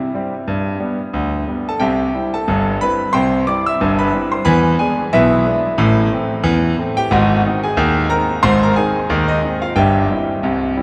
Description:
ragtime piano; 90 BPM; 2/4; swing 58% on 16ths; C major; A4 = 441 Hz
clear concert grand piano; solo; 0.0-10.8 s; G1 to E6; -17 LUFS; equal
wet cathedral reverb, RT60 5.2 s; in a vast, echoing space; -17 LUFS; mono
0.0-1.8 A section; 1.8-10.8 B section
0.5 G; 1.8 C; 4.5 E7; 5.8 Am; 7.1 Ab7; 9.8 C/G
| 0.46 1.13 | 1.80 2.47 | 3.14 3.80 | 4.47 5.13 | 5.80 6.46 | 7.12 7.79 | 8.46 9.12 | 9.79 10.46

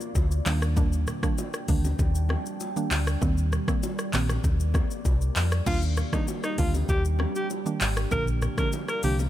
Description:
afrobeats; 98 BPM; 4/4; straight; Eb major; A4 = 438 Hz
deep dark ambient pad; sustained chords; 0.0-9.3 s; G3 to G5; -35 LUFS; equal; chorus, built-in reverb
afro-pop drum kit; drums; 0.0-9.3 s; crash cymbal, handclaps, hi-hat, kick drum, rim click, shaker; -28 LUFS; equal
downlifter; sound effects; 0.0-0.8 s; barely audible
hollow-body short-scale fingered electric bass; bass; 0.2-9.3 s; Ab1 to F2; -25 LUFS; equal
bongos and congas; percussion; 0.2-9.3 s; -38 LUFS; left 3 dB
mallet-like synth pluck; accompaniment; 0.5-9.2 s; D3 to D4; -31 LUFS; right 4 dB; chorus
breathy alto saxophone; melody; 5.7-9.2 s; Eb4 to Bb4; -31 LUFS; left 1 dB
little or no reverb; -23 LUFS; side -13 dB against mid
0.0-5.7 A section; 5.7-9.3 B section
0.5 Ebmaj7; 3.2 Cm7; 5.7 Ebmaj7; 8.1 Bb
0.16 | 0.77 1.38 1.99 2.60 | 3.22 3.83 4.44 5.05 | 5.67 6.28 6.89 7.50 | 8.12 8.73

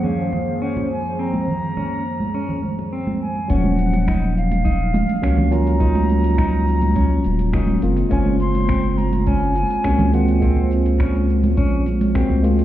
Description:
sunset chillout; 104 BPM; 4/4; straight; Eb dorian; A4 = 444 Hz
breathy silver concert flute; melody; 0.0-10.7 s; F5 to C6; -27 LUFS; left 1 dB; digital delay
tine electric piano; accompaniment; 0.0-12.6 s; Gb2 to C5; -22 LUFS; right 1 dB; auto-pan, low-pass filter, ping-pong delay
airy breathy pad; sustained chords; 0.0-3.5 s; Eb3 to C5; -26 LUFS; equal; chorus
clean electric guitar; arpeggios; 0.0-12.4 s; C4 to Eb4; -28 LUFS; left 2 dB; harmonic tremolo, low-pass filter, ping-pong delay
congas; percussion; 0.0-12.6 s; -25 LUFS; right 3 dB
round analog bass; bass; 3.5-12.6 s; Eb1 to Db2; -20 LUFS; equal
dusty soul sampler-style drum kit; drums; 3.5-12.6 s; cabasa, finger snaps, hi-hat; -39 LUFS; equal; overdrive
electronic kick drum; drums; 3.5-12.3 s; -22 LUFS; equal
light reverb, digital ambience; heard muffled through a wall, stone room reverb, EQ; -16 LUFS; side -13 dB against mid
0.0-3.5 A section; 3.5-12.6 B section
filter sweep on tine electric piano 0.0-3.5
0.0 Gbmaj9#11; 3.5 Ebm9; 7.8 Gbmaj9#11
0.03 0.61 | 1.19 1.76 2.34 2.92 | 3.50 4.07 4.65 5.23 | 5.80 6.38 6.96 7.53 | 8.11 8.69 9.26 9.84 | 10.42 10.99 11.57 12.15

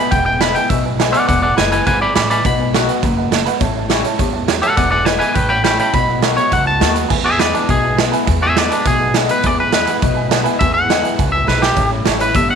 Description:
rockabilly; 206 BPM; 4/4; straight; E mixolydian; A4 = 440 Hz
twangy electric guitar; melody; 0.0-12.6 s; D4 to B5; -16 LUFS; equal; tape echo
dark upright piano; accompaniment; 0.0-12.6 s; B4 to B5; -24 LUFS; right 11 dB
picked swing-style acoustic guitar; accompaniment; 0.0-12.6 s; E2 to F#4; -21 LUFS; left 15 dB
upright bass; bass; 0.1-12.6 s; E1 to E2; -21 LUFS; left 2 dB
raw garage drum kit; drums; 0.1-12.4 s; crash cymbal, hi-hat, kick drum, snare drum; -18 LUFS; right 5 dB
moderate spring reverb, RT60 1.2 s; 1960s-style stereo with parts hard left and right; -13 LUFS; side -7 dB against mid
0.0-7.1 A section; 7.1-12.6 A section
drum fill 11.5
0.0 E7; 2.4 B7; 3.6 A7; 4.8 E7; 5.4 A7; 5.9 B7; 7.1 E7; 11.8 A7
| 0.11 0.41 0.70 0.99 | 1.28 1.57 1.86 2.15 | 2.44 2.73 3.03 3.32 | 3.61 3.90 4.19 4.48 | 4.77 5.07 5.36 5.65 | 5.94 6.23 6.52 6.81 | 7.10 7.39 7.69 7.98 | 8.27 8.56 8.85 9.14 | 9.43 9.72 10.02 10.31 | 10.60 10.89 11.18 11.47 | 11.76 12.05 12.35

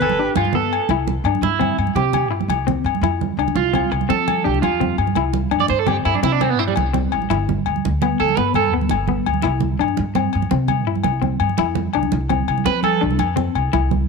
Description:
highlife guitar band; 112 BPM (dotted quarters); 12/8; straight; C major; A4 = 440 Hz
electric guitar at the edge of break-up; accompaniment; 0.0-14.0 s; B3 to E4; -24 LUFS; left 16 dB; harmonic tremolo
electric guitar at the edge of break-up; arpeggios; 0.0-8.7, 12.7-13.0 s; G3 to D5; -22 LUFS; right 12 dB; wide subtle chorus, tape echo
upright bass; bass; 0.0-14.0 s; G1 to F3; -22 LUFS; equal
agogo bells; percussion; 0.0-13.9 s; -24 LUFS; left 17 dB
congas; percussion; 0.0-14.0 s; -24 LUFS; right 13 dB
light reverb, studio reverb; 1960s-style stereo with parts hard left and right; -17 LUFS; side -4 dB against mid
0.9-14.1 A section
clean electric guitar solo 0.9-14.1
0.0 Gadd9; 0.9 C; 3.0 F; 5.2 C; 7.3 G; 9.4 C; 11.6 F5
0.37 | 0.90 1.43 1.96 2.50 | 3.03 3.56 4.10 4.63 | 5.16 5.70 6.23 6.77 | 7.30 7.84 8.37 8.91 | 9.44 9.98 10.52 11.05 | 11.59 12.13 12.66 13.20 | 13.74

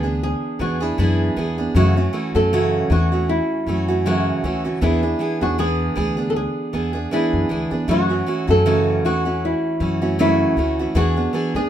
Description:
acoustic pop; 78 BPM; 4/4; swing 55% on 16ths; A4 = 437 Hz
flamenco guitar; melody; 0.0-11.7 s; E4 to A4; -22 LUFS; equal
picked steel-string acoustic guitar; accompaniment; 0.0-11.7 s; F#2 to G#4; -21 LUFS; right 2 dB
upright bass; bass; 0.0-11.7 s; D2 to F#2; -22 LUFS; left 1 dB
light reverb; minimal, uncompressed stereo recording; -17 LUFS; side -10 dB against mid
0.0-11.7 A section
0.0 E7; 1.8 F#m7; 4.8 E7; 7.9 F#m7; 11.0 E7
0.21 0.98 | 1.75 2.52 3.28 4.05 | 4.82 5.58 6.35 7.12 | 7.88 8.65 9.42 10.19 | 10.95

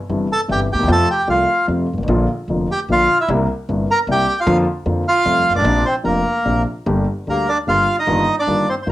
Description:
tango; 151 BPM; 3/4; rubato; Bb major; A4 = 440 Hz
warm concert grand piano; accompaniment; 0.1-8.9 s; F1 to G4; -19 LUFS; left 1 dB; cassette tape
upright bass; bass; 0.1-8.9 s; F1 to F2; -23 LUFS; right 1 dB
bandoneon; melody; 0.3-8.9 s; Bb3 to Bb5; -16 LUFS; right 1 dB; cassette tape
wet small room reverb, RT60 0.6 s; home recording on cassette; -15 LUFS; side -15 dB against mid
0.0-6.9 A section; 6.9-8.9 B section
0.0 C/G; 0.9 F; 2.1 Bb; 3.3 C7; 4.5 Bb/F; 5.3 Fadd9; 5.7 Bbadd9; 6.9 Gm; 8.1 Ebadd9/G
0.09 0.49 | 0.88 1.28 1.68 | 2.08 2.49 2.89 | 3.29 3.68 4.08 | 4.47 4.86 5.26 | 5.65 6.05 6.46 | 6.87 7.27 7.67 | 8.07 8.47 8.87

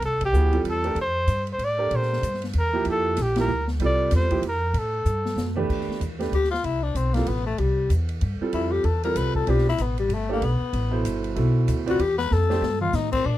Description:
modal jazz; 190 BPM; 3/4; swing 61% on 8ths; F lydian from 5.7 s; A4 = 440 Hz
warm trumpet; melody; 0.0-5.6 s; G4 to D5; -25 LUFS; equal
upright bass; bass; 0.0-13.4 s; G1 to Bb2; -24 LUFS; equal
open jazz drum kit; drums; 0.0-13.2 s; crash cymbal, hi-hat, kick drum, ride cymbal, snare drum, toms; -34 LUFS; equal
clear baby grand piano; accompaniment; 0.3-12.6 s; B2 to D5; -27 LUFS; right 4 dB
growling tenor saxophone; second line; 6.3-13.4 s; G3 to B4; -25 LUFS; left 5 dB
light reverb; -21 LUFS; side -14 dB against mid
0.0-5.7 A section; 5.7-13.3 B section
band accent 0.2, 3.3; drum fill 5.1-5.7, 12.3-12.9; tenor saxophone solo 5.7-13.4
0.0 Fadd9; 1.9 Bb69; 3.8 Fadd9; 5.7 Fmaj9; 9.5 Em; 12.3 F69
| 0.02 0.34 0.65 | 0.97 1.28 1.60 | 1.91 2.23 2.54 | 2.86 3.17 3.49 | 3.81 4.12 4.43 | 4.75 5.07 5.38 | 5.70 6.01 6.33 | 6.64 6.96 7.27 | 7.59 7.90 8.22 | 8.53 8.85 9.16 | 9.48 9.79 10.11 | 10.43 10.74 11.05 | 11.37 11.69 12.00 | 12.31 12.63 12.95 | 13.26

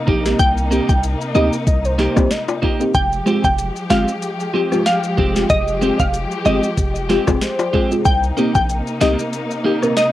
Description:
dancehall; 94 BPM; 4/4; swing 56% on 16ths; C minor; A4 = 442 Hz
glassy wavetable pluck; melody; 0.0-10.1 s; Eb5 to G5; -20 LUFS; equal; chorus, analog delay
warm studio string section; sustained chords; 0.0-10.1 s; C3 to G4; -24 LUFS; left 1 dB; sidechain pumping, cassette tape
deep mellow chord stab; accompaniment; 0.1-9.9 s; Ab3 to Bb4; -19 LUFS; left 1 dB; chorus, cassette tape
clean electric guitar; arpeggios; 0.1-9.9 s; Ab3 to G4; -21 LUFS; right 4 dB; lush chorus, cassette tape
warm 808-style bass; bass; 0.1-9.2 s; F1 to D2; -20 LUFS; equal
afro-pop drum kit; drums; 0.1-10.1 s; hi-hat, kick drum, rim click, snare drum; -21 LUFS; equal
maracas and timbales; percussion; 0.3-10.1 s; -28 LUFS; left 6 dB
warm velvety synth lead; second line; 1.7-2.8, 6.8-7.9 s; G4 to Eb5; -26 LUFS; left 2 dB; chorus, cassette tape, analog delay
little or no reverb; home recording on cassette; -15 LUFS; side -14 dB against mid
0.0-10.1 A section
0.0 Cm7; 2.9 Fmadd9; 8.1 Cm7
| 0.39 1.03 1.67 2.31 | 2.95 3.58 4.22 4.86 | 5.50 6.14 6.78 7.42 | 8.05 8.69 9.33 9.97

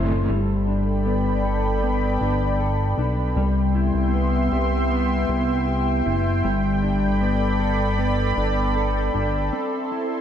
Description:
dream pop; 78 BPM; 4/4; straight; G major; A4 = 444 Hz
crunchy overdriven guitar; accompaniment; 0.0-0.8 s; A2 to A4; -30 LUFS; right 2 dB; tremolo, analog chorus
lush unison pad; sustained chords; 0.0-10.2 s; B3 to C6; -25 LUFS; right 2 dB; chorus
mellow electric guitar; arpeggios; 0.0-10.2 s; G3 to A4; -25 LUFS; left 3 dB; analog chorus, tape echo
chorused synth bass; bass; 0.0-9.5 s; F#1 to C2; -23 LUFS; equal
moderate plate reverb, RT60 2.7 s; dreamy mix soaked in reverb; -19 LUFS; side -9 dB against mid
0.3-10.2 A section
break 9.5-10.2
0.3 Gadd9; 3.4 Cmaj7; 6.4 Gadd9; 9.5 Am
| 0.29 1.06 1.83 2.60 | 3.37 4.14 4.91 5.68 | 6.45 7.22 7.99 8.76 | 9.53

